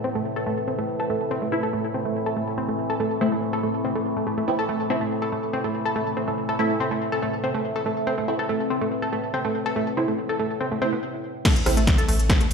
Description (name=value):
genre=driving peak-time techno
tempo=142 BPM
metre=4/4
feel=straight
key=A minor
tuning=A4 = 440 Hz
part: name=analog pluck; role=riff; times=0.0-12.4 s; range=A3 to A4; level=-26 LUFS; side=right 1 dB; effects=chorus, sidechain pumping, digital delay
part: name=overtone-sweeping drone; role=drone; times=0.0-12.5 s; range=A2 to E3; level=-30 LUFS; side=equal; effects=chorus, built-in reverb, sidechain pumping
part: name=deep dark ambient pad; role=texture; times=0.0-11.0 s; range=C4 to E5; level=-30 LUFS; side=left 2 dB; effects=chorus, built-in reverb, sidechain pumping
part: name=filtered dub chord stab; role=stabs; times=1.5-11.8 s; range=A3 to E4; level=-28 LUFS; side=equal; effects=phaser, lush chorus, sidechain pumping, ping-pong delay
part: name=electronic kick drum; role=drums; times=11.4-12.4 s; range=none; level=-20 LUFS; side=equal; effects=small room ambience
part: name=techno drum kit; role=drums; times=11.5-12.5 s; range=crash cymbal, hi-hat, ride cymbal, rim click, snare drum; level=-24 LUFS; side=left 1 dB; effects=low-pass filter on hats, small room ambience, low-pass filter on snare, low-pass filter on cymbals
part: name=saturated sub bass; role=bass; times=11.7-12.5 s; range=A1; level=-22 LUFS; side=equal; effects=overdrive, sidechain pumping, low-pass filter
room=moderate stone room reverb, RT60 1.2 s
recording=played on a big sound system in a bare room, stone room reverb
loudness=-22 LUFS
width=side -5 dB against mid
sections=0.0-11.4 A section; 11.4-12.5 B section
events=filter sweep on synth arpeggio sound 0.0-11.4; stop 11.0-11.4; drop 11.4-12.5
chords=0.0 Am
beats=0.04 0.47 0.89 | 1.31 1.73 2.15 2.58 | 3.00 3.42 3.85 4.27 | 4.69 5.11 5.54 5.96 | 6.38 6.80 7.22 7.65 | 8.07 8.49 8.91 9.34 | 9.76 10.18 10.61 11.03 | 11.45 11.87 12.30